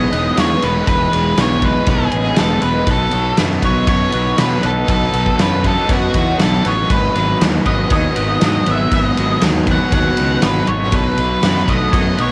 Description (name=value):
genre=rock, shoegaze and dream pop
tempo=119 BPM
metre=4/4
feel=straight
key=unclear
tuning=A4 = 440 Hz
part: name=octave-fuzz lead guitar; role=melody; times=0.0-12.3 s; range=F#4 to F#5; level=-22 LUFS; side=equal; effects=distortion, cassette tape, analog delay
part: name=string machine, violins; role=sustained chords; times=0.0-12.3 s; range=B4 to D#6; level=-32 LUFS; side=equal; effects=none
part: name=twangy electric guitar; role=arpeggios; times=0.0-12.3 s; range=B4 to C#5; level=-32 LUFS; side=equal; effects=none
part: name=biting overdriven guitar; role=riff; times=0.0-12.3 s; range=G#2 to D#4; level=-25 LUFS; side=equal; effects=subtle chorus, cassette tape
part: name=crunchy overdriven guitar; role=riff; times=0.0-12.3 s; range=G#2 to D#4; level=-24 LUFS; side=equal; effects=reverse reverb, cassette tape
part: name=fuzz fingered electric bass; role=bass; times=0.0-12.3 s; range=E1 to B2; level=-22 LUFS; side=equal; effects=overdrive, transformer saturation
part: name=huge arena drum kit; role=drums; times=0.1-12.3 s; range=kick drum, ride cymbal, snare drum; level=-21 LUFS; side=equal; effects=cassette tape
room=light reverb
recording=home recording on cassette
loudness=-15 LUFS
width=mono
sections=0.0-12.3 A section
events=none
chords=0.0 Emaj7; 2.9 B7; 6.9 G#m7; 10.9 B7